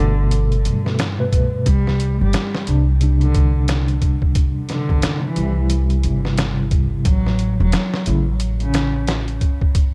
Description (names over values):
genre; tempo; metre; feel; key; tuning
trip hop; 89 BPM; 4/4; swing 60% on 16ths; unclear; A4 = 443 Hz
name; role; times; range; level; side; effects
dark cello; melody; 0.0-9.0 s; C#3 to G3; -27 LUFS; equal; vintage 12-bit sampler grit, tape echo
tine electric piano; accompaniment; 0.0-8.3 s; B2 to B4; -25 LUFS; equal; tremolo
upright bass; bass; 0.0-9.4 s; E1 to G2; -21 LUFS; equal; none
trip hop sampler-style drum kit; drums; 0.3-9.9 s; hi-hat, kick drum, snare drum; -22 LUFS; equal; none
room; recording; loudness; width
small room ambience; dark, warm production; -18 LUFS; mono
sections
0.0-9.9 A section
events
none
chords
0.0 Gadd9; 1.7 Csus2; 7.1 N.C.